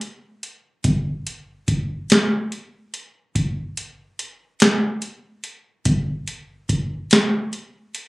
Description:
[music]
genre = blues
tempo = 48 BPM (dotted quarters)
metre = 12/8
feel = straight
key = none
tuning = none
[part]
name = booming analog drum machine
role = drums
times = 0.0-8.1 s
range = hi-hat, kick drum, snare drum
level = -18 LUFS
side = equal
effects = none
[sound]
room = moderate club reverb, RT60 0.5 s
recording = recorded on a phone in the room, club reverb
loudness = -19 LUFS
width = side -24 dB against mid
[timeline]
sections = 0.0-8.1 A section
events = none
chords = none

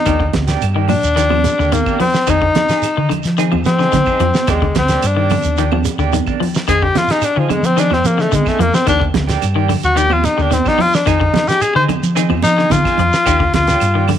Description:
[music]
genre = afrobeat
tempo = 109 BPM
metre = 4/4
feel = straight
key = F dorian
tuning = A4 = 436 Hz
[part]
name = clear tenor saxophone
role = melody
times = 0.0-14.1 s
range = F3 to C5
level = -16 LUFS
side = left 3 dB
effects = none
[part]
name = electric guitar at the edge of break-up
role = arpeggios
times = 0.1-14.2 s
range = Bb2 to F3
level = -22 LUFS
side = left 11 dB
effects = none
[part]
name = clean electric guitar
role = stabs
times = 0.1-14.1 s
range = F3 to Ab4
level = -24 LUFS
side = right 13 dB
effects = tremolo, slapback echo
[part]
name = fingered electric bass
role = bass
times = 0.1-14.1 s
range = D2 to F3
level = -17 LUFS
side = equal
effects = none
[part]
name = damped 70s drum kit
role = drums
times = 0.1-14.2 s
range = hi-hat, kick drum, snare drum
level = -21 LUFS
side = right 1 dB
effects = none
[part]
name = claves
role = percussion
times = 0.1-14.2 s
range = none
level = -32 LUFS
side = right 14 dB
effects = none
[part]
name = congas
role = percussion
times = 0.1-14.2 s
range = none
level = -22 LUFS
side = right 11 dB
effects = none
[part]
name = shekere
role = percussion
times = 0.1-14.2 s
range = none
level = -26 LUFS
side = right 6 dB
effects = none
[sound]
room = light reverb, small room ambience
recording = 1960s-style stereo with parts hard left and right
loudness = -12 LUFS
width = side -10 dB against mid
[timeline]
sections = 0.0-14.2 A section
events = tenor saxophone solo 0.0-14.2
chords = 0.1 Ebmaj9; 2.3 Fm7; 4.5 Ebmaj9; 6.7 Fm7; 8.9 Ebmaj9; 11.1 Fm7; 13.3 Ebmaj9

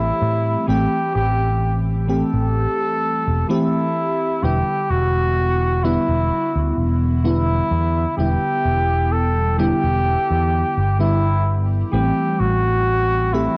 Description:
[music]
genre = vaporwave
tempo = 64 BPM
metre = 4/4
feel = straight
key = E minor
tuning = A4 = 440 Hz
[part]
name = warm flugelhorn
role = melody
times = 0.0-13.6 s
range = E4 to A4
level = -24 LUFS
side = equal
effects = tape echo
[part]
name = FM electric piano with soft pad layer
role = accompaniment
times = 0.0-13.6 s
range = D3 to G4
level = -25 LUFS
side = equal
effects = phaser, analog chorus, cassette tape
[part]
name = mellow fretless electric bass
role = bass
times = 0.0-13.5 s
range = E1 to A2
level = -22 LUFS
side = equal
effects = none
[sound]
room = light reverb, small room ambience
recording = worn, warbling old tape, cassette tape, warbly pitch drift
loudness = -19 LUFS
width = mono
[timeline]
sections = 0.0-13.6 A section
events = none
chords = 0.0 Am7; 4.4 Em7; 11.9 Am7

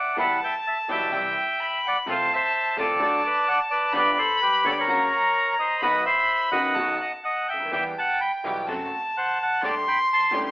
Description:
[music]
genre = tango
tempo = 128 BPM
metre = 4/4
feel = rubato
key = E minor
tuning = A4 = 440 Hz
[part]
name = bandoneon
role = melody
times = 0.0-10.3 s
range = G4 to C6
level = -22 LUFS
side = equal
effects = none
[part]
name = warm violin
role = second line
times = 0.0-10.5 s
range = E5 to C6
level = -26 LUFS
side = left 1 dB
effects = none
[part]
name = warm concert grand piano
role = accompaniment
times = 0.2-10.5 s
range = F#1 to A4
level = -32 LUFS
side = equal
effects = none
[part]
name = muted studio string section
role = stabs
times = 0.2-10.5 s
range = G3 to G4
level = -34 LUFS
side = equal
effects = none
[part]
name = upright bass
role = bass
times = 0.2-10.5 s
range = F#1 to E2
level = -48 LUFS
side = right 1 dB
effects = none
[sound]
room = wet studio reverb, RT60 0.6 s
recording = band playing live in one room, telephone sound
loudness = -21 LUFS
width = side -20 dB against mid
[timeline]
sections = 0.2-10.5 A section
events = band accent 0.0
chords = 0.2 Em; 1.1 C; 2.1 F/C; 3.0 D; 3.9 G; 4.9 F#; 5.8 B; 7.7 Em; 8.7 F#dim; 9.6 Dsus4

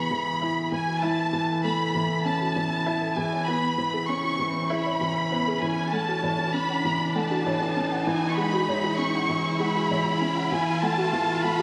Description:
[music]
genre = piano and strings electronica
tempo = 98 BPM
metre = 4/4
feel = straight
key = F# minor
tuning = A4 = 438 Hz
[part]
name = warm studio violin section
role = melody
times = 0.0-11.6 s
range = G#5 to C#6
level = -29 LUFS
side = equal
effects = digital delay
[part]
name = warbly dusty pluck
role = arpeggios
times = 0.0-11.6 s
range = E4 to F#5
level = -37 LUFS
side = equal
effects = subtle chorus, digital delay
[part]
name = felt-muted upright piano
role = riff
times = 0.0-11.6 s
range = E3 to G#4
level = -29 LUFS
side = equal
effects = none
[part]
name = riser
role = sound effects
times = 1.1-11.6 s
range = none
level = -38 LUFS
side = equal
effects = none
[sound]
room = wet lush hall reverb, RT60 2.3 s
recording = none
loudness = -26 LUFS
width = mono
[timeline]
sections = 0.0-11.6 A section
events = build-up 0.0-11.6; filter sweep on synth arpeggio sound 0.0-11.6; riser 1.1-11.6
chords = 0.0 E; 0.7 F#m7; 3.2 C#m7; 5.6 F#m7; 8.1 E; 10.5 F#m7

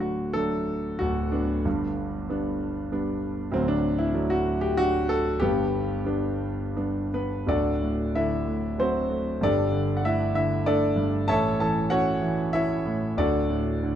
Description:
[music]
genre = classical, lyrical solo piano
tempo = 81-100 BPM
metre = 3/4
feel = rubato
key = G major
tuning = A4 = 441 Hz
[part]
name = warm concert grand piano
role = solo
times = 0.0-14.0 s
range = D1 to A5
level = -23 LUFS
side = equal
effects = none
[sound]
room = moderate recital hall reverb, RT60 1.8 s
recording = dark, warm production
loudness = -23 LUFS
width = side -10 dB against mid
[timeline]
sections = 0.0-7.5 A section; 7.5-14.0 B section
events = none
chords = 0.0 D; 1.7 G; 3.5 D; 5.4 G; 7.5 Dadd9; 9.4 Gsus2; 11.3 A; 13.2 D

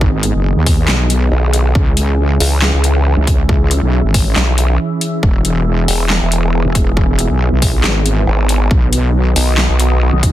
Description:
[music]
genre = heavy wobble dubstep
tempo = 138 BPM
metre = 4/4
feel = half-time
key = unclear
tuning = A4 = 441 Hz
[part]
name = supersaw pad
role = sustained chords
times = 0.0-10.3 s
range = D#3 to E5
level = -20 LUFS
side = right 1 dB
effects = phaser, sidechain pumping, low-pass filter
[part]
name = wobble bass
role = bass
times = 0.0-10.3 s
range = E1 to D#2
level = -14 LUFS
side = equal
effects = chorus, overdrive
[part]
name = electronic kick drum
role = drums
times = 0.0-10.3 s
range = none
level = -14 LUFS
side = equal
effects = small room reverb
[part]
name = dubstep drum kit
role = drums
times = 0.2-10.3 s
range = handclaps, hi-hat, snare drum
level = -17 LUFS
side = left 1 dB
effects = small room reverb
[part]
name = vowel-sweep wobble bass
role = bass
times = 1.3-10.1 s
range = E1 to C#2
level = -12 LUFS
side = equal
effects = chorus, overdrive
[sound]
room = little or no reverb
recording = dense, heavily limited modern master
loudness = -11 LUFS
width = side -14 dB against mid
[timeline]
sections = 0.0-10.3 A section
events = none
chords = 0.0 G#m; 1.8 C#m; 5.2 E; 8.7 B

